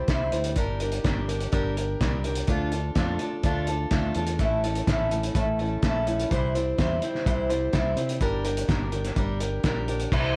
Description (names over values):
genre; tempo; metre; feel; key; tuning
folk rock and heartland rock; 126 BPM; 4/4; straight; unclear; A4 = 438 Hz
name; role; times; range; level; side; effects
picked old ladder-braced acoustic guitar; accompaniment; 0.0-10.4 s; A2 to C5; -30 LUFS; equal; none
fingered electric bass; bass; 0.1-10.4 s; G1 to C3; -32 LUFS; equal; none
cloth-damped thuddy drum kit; drums; 0.1-10.2 s; crash cymbal, hi-hat, kick drum, snare drum; -30 LUFS; equal; none
room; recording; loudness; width
light reverb; worn, warbling old tape, cassette tape, warbly pitch drift; -26 LUFS; mono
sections
0.0-10.1 A section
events
none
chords
0.0 C; 0.6 Gm; 2.5 Dm; 4.4 A; 6.3 C; 8.2 Gm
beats
0.09 | 0.57 1.05 1.53 2.00 | 2.48 2.96 3.44 3.92 | 4.40 4.87 5.35 5.83 | 6.31 6.79 7.26 7.74 | 8.22 8.70 9.17 9.65 | 10.13